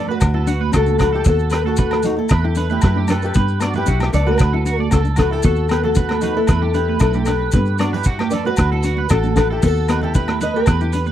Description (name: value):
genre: highlife guitar band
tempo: 115 BPM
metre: 4/4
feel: straight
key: unclear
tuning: A4 = 440 Hz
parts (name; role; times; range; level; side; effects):
- fingerpicked acoustic archtop guitar; melody; 0.0-11.1 s; D4 to D#5; -21 LUFS; left 3 dB; none
- nylon-string guitar; accompaniment; 0.0-11.1 s; B3 to E4; -27 LUFS; left 6 dB; none
- electric guitar at the edge of break-up; arpeggios; 0.0-11.1 s; F#4 to D5; -26 LUFS; right 8 dB; analog chorus, slapback echo
- fingered electric bass; bass; 0.0-11.1 s; A1 to G2; -20 LUFS; equal; none
- congas; percussion; 0.1-11.1 s; none; -26 LUFS; right 10 dB; none
- vintage drum kit; drums; 0.2-11.1 s; hi-hat, kick drum, rim click; -18 LUFS; equal; none
- agogo bells; percussion; 0.2-10.8 s; none; -30 LUFS; left 4 dB; none
- maracas; percussion; 0.2-11.1 s; none; -34 LUFS; left 6 dB; none
room: little or no reverb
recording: dry, close 1970s-style studio recording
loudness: -15 LUFS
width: side -11 dB against mid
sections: 0.0-11.1 A section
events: none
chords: 0.2 D; 1.3 B7/D#; 2.3 Em; 3.3 Gadd9; 4.4 D; 5.4 B7/D#; 6.5 Em; 7.5 G; 8.6 D; 9.6 B7/D#